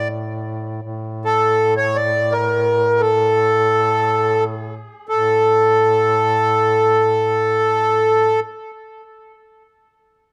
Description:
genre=Arabic maqam ensemble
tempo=free time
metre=none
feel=none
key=unclear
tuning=A4 = 440 Hz
part: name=accordion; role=melody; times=0.0-8.4 s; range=A4 to D5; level=-17 LUFS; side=equal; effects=tape echo
part: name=warm duduk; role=drone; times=0.0-8.4 s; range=A2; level=-28 LUFS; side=equal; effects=none
room=wet studio reverb, RT60 0.6 s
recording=dark, warm production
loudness=-17 LUFS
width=mono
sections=0.0-5.1 A section; 5.1-10.0 B section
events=slowing down 0.8-5.1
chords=none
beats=free time

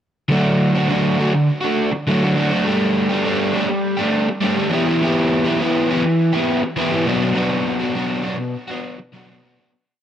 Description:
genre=rock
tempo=102 BPM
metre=4/4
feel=straight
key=unclear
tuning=A4 = 441 Hz
part: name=crunchy overdriven guitar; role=solo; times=0.3-9.7 s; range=B2 to G4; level=-16 LUFS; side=equal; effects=digital delay
room=moderate spring reverb, RT60 1.2 s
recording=none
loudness=-16 LUFS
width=side -10 dB against mid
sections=0.3-9.7 verse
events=fade-out 7.4-9.7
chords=0.3 D; 2.7 Gsus2; 4.7 Em; 7.1 Bm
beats=| 0.32 0.91 1.49 2.08 | 2.66 3.25 3.84 4.43 | 5.02 5.61 6.20 6.78 | 7.37 7.96 8.55 9.14

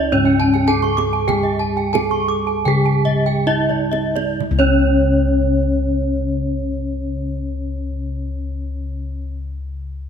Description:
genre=Balinese gamelan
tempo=61-116 BPM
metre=4/4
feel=straight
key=C# pelog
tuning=A4 = 437 Hz
part: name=gamelan-type bronze metallophone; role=melody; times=0.0-9.3 s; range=C#4 to A4-40c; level=-21 LUFS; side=equal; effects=none
part: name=gamelan-type bronze metallophone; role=accompaniment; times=0.0-9.3 s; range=C#3 to C#4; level=-28 LUFS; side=right 7 dB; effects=none
part: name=gamelan-type bronze metallophone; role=arpeggios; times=0.0-9.3 s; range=C#5 to C#6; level=-25 LUFS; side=right 7 dB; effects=none
part: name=gamelan-type bossed gongs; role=bass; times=0.0-9.2 s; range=C#2 to C#5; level=-21 LUFS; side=left 2 dB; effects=none
part: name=gamelan-type bronze metallophone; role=arpeggios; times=0.1-9.3 s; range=C#5 to D6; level=-24 LUFS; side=left 3 dB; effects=none
part: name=kendang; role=percussion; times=0.3-4.9 s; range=none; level=-29 LUFS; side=right 8 dB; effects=none
room=moderate scoring stage reverb, RT60 2.0 s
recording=none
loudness=-16 LUFS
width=side -7 dB against mid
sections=0.0-4.4 A section; 4.4-10.1 B section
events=slowing down 0.0-4.4; drum fill 3.5-4.4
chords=none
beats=0.13 0.68 | 1.27 1.93 2.65 3.47 | 4.39 5.37 6.35 7.33 | 8.32 9.30

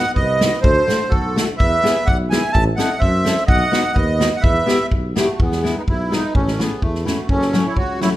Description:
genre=alpine folk, alpine dance band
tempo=126 BPM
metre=2/4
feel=straight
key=unclear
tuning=A4 = 440 Hz
part: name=accordion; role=melody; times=0.0-8.1 s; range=A3 to A5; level=-20 LUFS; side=right 1 dB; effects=light tremolo tuning
part: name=dark trumpet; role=second line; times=0.0-8.1 s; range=E4 to E5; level=-28 LUFS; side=right 5 dB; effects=none
part: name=fingerpicked steel-string acoustic guitar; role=accompaniment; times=0.0-8.1 s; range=E3 to A4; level=-23 LUFS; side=left 3 dB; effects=none
part: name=mellow tuba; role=bass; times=0.2-8.1 s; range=F#1 to F#2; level=-23 LUFS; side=equal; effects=none
part: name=natural country drum kit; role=drums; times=0.2-8.1 s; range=hi-hat, kick drum, snare drum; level=-19 LUFS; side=equal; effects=none
room=moderate recital hall reverb, RT60 1.7 s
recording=minimal, uncompressed stereo recording, lossy compression artefacts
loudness=-15 LUFS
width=side -14 dB against mid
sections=0.0-5.4 A section; 5.4-8.2 B section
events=none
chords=0.0 B; 0.6 D7; 1.6 E; 2.5 Am; 3.5 B; 4.4 Em; 5.4 E; 6.3 A; 7.3 F#m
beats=0.15 | 0.63 1.11 | 1.59 2.07 | 2.54 3.01 | 3.48 3.95 | 4.43 4.91 | 5.39 5.87 | 6.34 6.82 | 7.29 7.76

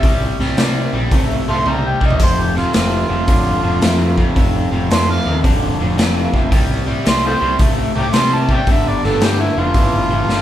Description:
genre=blues rock power trio and southern rock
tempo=111 BPM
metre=4/4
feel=swing 66% on 8ths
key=C major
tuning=A4 = 440 Hz
part: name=overdriven harmonica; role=melody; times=0.0-10.4 s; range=E4 to D6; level=-20 LUFS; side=right 1 dB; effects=none
part: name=overdriven semi-hollow guitar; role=riff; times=0.0-10.4 s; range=F2 to A3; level=-19 LUFS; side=equal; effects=none
part: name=growling picked electric bass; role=bass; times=0.0-10.4 s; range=F1 to C3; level=-20 LUFS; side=equal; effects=overdrive
part: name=raw garage drum kit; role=drums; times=0.0-10.4 s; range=hi-hat, kick drum, snare drum, splash cymbal, toms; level=-17 LUFS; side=equal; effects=none
room=moderate large studio reverb, RT60 0.9 s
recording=band playing live in one room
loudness=-13 LUFS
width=side -12 dB against mid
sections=0.0-10.4 A section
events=harmonica solo 0.0-10.4; drum fill 1.7-2.2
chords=0.0 C5; 2.2 F5; 6.5 C5; 8.7 G5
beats=| 0.04 0.58 1.12 1.66 | 2.20 2.74 3.28 3.82 | 4.36 4.90 5.44 5.98 | 6.52 7.06 7.60 8.13 | 8.67 9.21 9.75 10.28

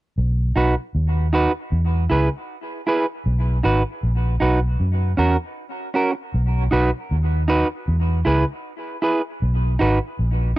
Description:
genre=dub reggae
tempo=78 BPM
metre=4/4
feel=straight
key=B major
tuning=A4 = 439 Hz
part: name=vintage muted fingered electric bass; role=bass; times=0.2-10.5 s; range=G#1 to F#2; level=-19 LUFS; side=equal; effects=none
part: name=clean electric guitar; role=accompaniment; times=0.6-10.6 s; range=C#4 to B4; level=-22 LUFS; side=right 2 dB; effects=vibrato effect, dub echo
room=little or no reverb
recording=dry, close 1970s-style studio recording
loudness=-18 LUFS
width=side -17 dB against mid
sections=0.2-10.6 A section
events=none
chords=0.2 B; 1.7 E; 3.3 B; 4.8 F#; 6.3 B; 7.9 E; 9.4 B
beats=| 0.17 0.94 1.71 2.48 | 3.25 4.02 4.79 5.56 | 6.33 7.10 7.87 8.64 | 9.41 10.18

